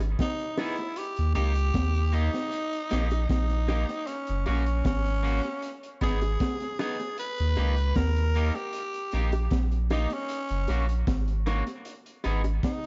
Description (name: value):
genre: roots reggae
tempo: 77 BPM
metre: 4/4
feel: straight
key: unclear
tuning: A4 = 440 Hz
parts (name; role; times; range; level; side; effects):
- warm sub bass; bass; 0.0-12.6 s; F#1 to D#2; -28 LUFS; equal; none
- crunchy breakbeat drum kit; drums; 0.0-12.9 s; hi-hat, kick drum, snare drum; -34 LUFS; equal; tape echo
- bongos; percussion; 0.0-12.6 s; none; -38 LUFS; equal; none
- raspy tenor saxophone; melody; 0.2-12.9 s; C#4 to B4; -35 LUFS; equal; tape echo
- electric guitar at the edge of break-up; accompaniment; 0.6-12.4 s; A#3 to G#4; -39 LUFS; equal; tape echo
room: studio reverb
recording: echo-heavy mix, nothing above 7.6 kHz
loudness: -28 LUFS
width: mono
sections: 0.0-12.9 A section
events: none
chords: 0.0 G#m; 1.0 D#; 4.1 F#; 5.6 G#m; 7.2 D#; 10.3 F#; 11.9 G#m